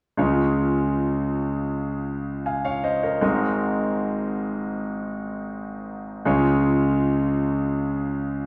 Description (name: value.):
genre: pop.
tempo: 79 BPM.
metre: 4/4.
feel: straight.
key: Db major.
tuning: A4 = 440 Hz.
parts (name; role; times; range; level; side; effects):
bright concert grand piano; accompaniment; 0.2-8.5 s; Ab1 to Ab5; -24 LUFS; equal; none.
room: wet large studio reverb, RT60 1.1 s.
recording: band playing live in one room.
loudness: -24 LUFS.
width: mono.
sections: 0.2-8.5 A section.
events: none.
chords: 0.2 Db; 3.2 Abadd9; 6.3 Db.